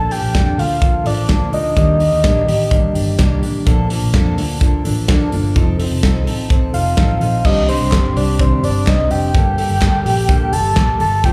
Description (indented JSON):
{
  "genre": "jangly indie pop",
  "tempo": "127 BPM",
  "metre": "4/4",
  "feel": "straight",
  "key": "Bb major",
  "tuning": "A4 = 438 Hz",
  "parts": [
    { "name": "soft octave-layered synth lead", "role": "melody", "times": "0.0-3.4, 6.7-11.3 s", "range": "C5 to A5", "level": "-21 LUFS", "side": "equal", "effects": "chorus, slapback echo, delay" },
    { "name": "fingerpicked plugged-in steel-string acoustic guitar", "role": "accompaniment", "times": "0.0-11.3 s", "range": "G2 to A4", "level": "-26 LUFS", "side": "equal", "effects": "slapback echo" },
    { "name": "mellow electric guitar", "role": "arpeggios", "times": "0.0-11.3 s", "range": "G2 to A4", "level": "-27 LUFS", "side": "equal", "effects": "none" },
    { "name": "vintage muted picked electric bass", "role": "bass", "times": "0.0-11.3 s", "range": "F1 to F2", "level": "-21 LUFS", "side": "equal", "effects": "none" },
    { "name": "modern studio drum kit", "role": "drums", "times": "0.1-11.3 s", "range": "crash cymbal, hi-hat, kick drum, snare drum", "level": "-20 LUFS", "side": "equal", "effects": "none" },
    { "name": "group handclap", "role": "percussion", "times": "7.9-10.9 s", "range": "none", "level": "-33 LUFS", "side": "equal", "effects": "slapback echo" }
  ],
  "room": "small room reverb",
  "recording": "live gig heard through the venue's PA, club ambience",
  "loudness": "-15 LUFS",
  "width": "mono",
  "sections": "0.0-7.5 A section; 7.5-11.3 B section",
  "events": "none",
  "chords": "0.0 Bbmaj7; 1.8 Ebmaj7; 3.7 Bbmaj7; 5.6 F7; 7.5 Cmadd9; 9.3 Gmadd9"
}